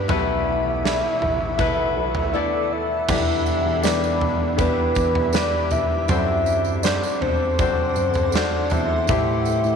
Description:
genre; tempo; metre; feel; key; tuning
pop ballad; 80 BPM; 4/4; straight; E minor; A4 = 437 Hz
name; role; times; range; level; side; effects
soft octave-layered synth lead; melody; 0.0-9.8 s; B4 to E5; -23 LUFS; left 2 dB; chorus
clear baby grand piano; accompaniment; 0.0-9.8 s; A2 to D5; -26 LUFS; left 12 dB; none
granular cloud pad; sustained chords; 0.0-9.8 s; G4 to E6; -31 LUFS; left 1 dB; built-in reverb
picked steel-string acoustic guitar; arpeggios; 0.0-9.8 s; E2 to A4; -29 LUFS; right 12 dB; none
bell-like tine electric piano; bass; 0.0-9.8 s; A1 to A2; -26 LUFS; equal; phaser
huge arena drum kit; drums; 0.1-9.3 s; crash cymbal, kick drum, snare drum, toms; -26 LUFS; right 3 dB; none
tambourine; percussion; 3.1-9.8 s; none; -37 LUFS; right 16 dB; none
room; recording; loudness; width
light reverb, small room ambience; 1960s-style stereo with parts hard left and right; -18 LUFS; side -6 dB against mid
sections
0.0-3.1 A section; 3.1-9.8 B section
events
none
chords
0.1 B7sus4; 3.1 Em7; 6.1 D7; 9.1 Am7

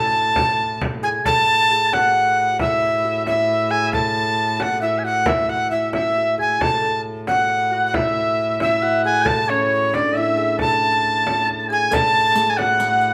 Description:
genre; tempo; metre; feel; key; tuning
medieval dance; 90 BPM (dotted quarters); 6/8; straight; A major; A4 = 440 Hz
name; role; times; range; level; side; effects
bright reedy tenor recorder; melody; 0.0-13.1 s; C#5 to A5; -20 LUFS; equal; none
bright shawm; second line; 0.0-13.1 s; C#5 to A5; -27 LUFS; equal; none
kalimba; second line; 0.0-13.1 s; C#4 to A4; -30 LUFS; equal; none
warm viola da gamba; drone; 0.0-13.1 s; A2; -33 LUFS; equal; none
frame drum; percussion; 0.4-12.8 s; none; -29 LUFS; equal; none
riq; percussion; 11.9-13.1 s; none; -34 LUFS; equal; none
room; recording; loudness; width
moderate large studio reverb, RT60 1.1 s; band playing live in one room; -19 LUFS; mono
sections
0.0-1.3 A section; 1.3-11.9 B section; 11.9-13.1 B section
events
none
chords
none

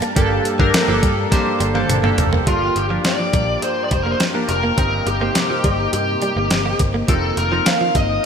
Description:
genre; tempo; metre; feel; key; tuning
1980s-style pop; 104 BPM; 4/4; straight; G minor; A4 = 441 Hz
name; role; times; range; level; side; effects
chorused retro synth keys; accompaniment; 0.0-8.3 s; G2 to A5; -22 LUFS; equal; none
sweeping resonant pad; sustained chords; 0.0-8.3 s; C3 to A5; -28 LUFS; left 2 dB; lush chorus
direct-recorded clean electric guitar; riff; 0.0-8.0 s; F3 to C4; -27 LUFS; right 4 dB; lush chorus
clean 12-bit digital drum machine; drums; 0.0-8.1 s; hi-hat, kick drum, snare drum, toms; -20 LUFS; equal; overdrive
vintage muted picked electric bass; bass; 0.2-8.2 s; F1 to G2; -23 LUFS; equal; none
bluesy overdriven lead guitar; melody; 2.5-8.2 s; F4 to F5; -21 LUFS; equal; distortion
room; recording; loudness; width
moderate lush hall reverb, RT60 2.6 s; bright 1980s-style digital production; -15 LUFS; side -7 dB against mid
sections
0.2-2.5 A section; 2.5-8.3 B section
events
drum fill 1.3-2.5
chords
0.2 Gmadd9; 2.5 Gm7; 4.8 Cm7/G; 7.1 F7sus4

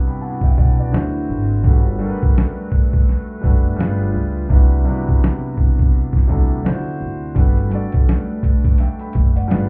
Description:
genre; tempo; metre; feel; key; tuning
lo-fi hip hop; 84 BPM; 4/4; swing 60% on 16ths; G major; A4 = 440 Hz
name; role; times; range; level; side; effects
clear upright piano; accompaniment; 0.0-9.7 s; C3 to B5; -26 LUFS; equal; cassette tape
warbly tape-like pad; sustained chords; 0.0-9.7 s; C3 to B4; -32 LUFS; equal; chorus, built-in reverb
lo-fi sampler-style drum kit; drums; 0.4-9.7 s; hi-hat, kick drum, snare drum; -17 LUFS; equal; none
upright bass; bass; 0.6-9.7 s; F#1 to D3; -22 LUFS; equal; none
room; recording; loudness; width
little or no reverb; heard muffled through a wall, club reverb, EQ; -17 LUFS; mono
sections
0.0-9.7 A section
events
break 0.0-7.4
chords
0.0 Cmaj9#11; 0.9 D9; 1.6 Gmaj9; 3.8 G7b9; 4.5 Cmaj9#11; 6.6 D9; 7.4 Gmaj9

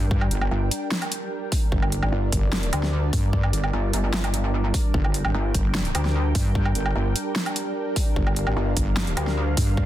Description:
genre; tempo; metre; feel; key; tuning
heavy wobble dubstep; 149 BPM; 4/4; half-time; G minor; A4 = 439 Hz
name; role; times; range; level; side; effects
supersaw pad; sustained chords; 0.0-9.9 s; G3 to G5; -30 LUFS; equal; phaser, sidechain pumping, low-pass filter
wobble bass; bass; 0.0-9.9 s; G1 to G2; -24 LUFS; equal; chorus, overdrive
electronic kick drum; drums; 0.1-9.9 s; none; -24 LUFS; equal; overdrive, studio reverb
big-room dance drum kit; drums; 0.2-9.7 s; hi-hat, snare drum, woodblock; -28 LUFS; right 1 dB; overdrive, studio reverb
pulsing pluck wobble bass; bass; 0.5-9.6 s; G1 to D2; -22 LUFS; equal; chorus, overdrive
room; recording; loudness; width
digital ambience; dense, heavily limited modern master; -21 LUFS; side -13 dB against mid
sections
0.0-9.9 A section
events
none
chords
0.0 Gm

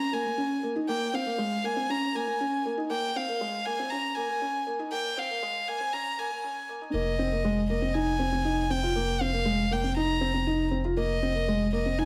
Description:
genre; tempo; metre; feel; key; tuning
piano and strings electronica; 119 BPM; 4/4; straight; F minor; A4 = 441 Hz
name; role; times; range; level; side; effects
dark violin; melody; 0.0-12.1 s; Eb5 to Bb5; -32 LUFS; equal; none
felt-muted upright piano; riff; 0.0-12.1 s; Ab3 to F4; -32 LUFS; equal; none
round analog bass; bass; 0.0-12.1 s; Eb1 to F1; -33 LUFS; equal; high-pass filter
room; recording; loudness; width
moderate echo chamber reverb, RT60 1.5 s, studio reverb; high-pass filter; -29 LUFS; mono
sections
0.0-6.9 A section; 6.9-12.1 B section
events
build-up 0.0-6.9; filter sweep 0.0-6.9; drop 6.9-12.1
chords
0.0 Eb9sus4; 6.9 F7sus4

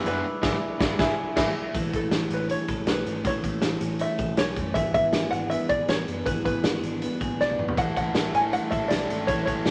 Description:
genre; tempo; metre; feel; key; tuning
jangly indie pop; 159 BPM; 4/4; straight; A major; A4 = 440 Hz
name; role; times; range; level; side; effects
open-back banjo; melody; 0.0-9.7 s; A4 to G#5; -30 LUFS; equal; none
biting overdriven guitar; accompaniment; 0.0-1.5, 7.8-9.7 s; G#2 to A4; -35 LUFS; equal; none
reed electric piano; accompaniment; 0.0-1.8 s; E4 to G#5; -31 LUFS; equal; none
twelve-string electric guitar; arpeggios; 0.0-9.7 s; E3 to A4; -32 LUFS; equal; spring reverb
fingered electric bass; bass; 0.0-9.7 s; F#1 to B1; -39 LUFS; equal; none
raw garage drum kit; drums; 0.1-9.7 s; crash cymbal, hi-hat, kick drum, snare drum, toms; -30 LUFS; equal; none
room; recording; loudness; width
moderate studio reverb, RT60 0.6 s; none; -26 LUFS; mono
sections
0.0-1.7 A section; 1.7-9.7 B section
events
band accent 0.2-1.7; drum fill 7.4-7.8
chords
0.0 E7; 1.7 A; 4.8 E7; 7.8 A

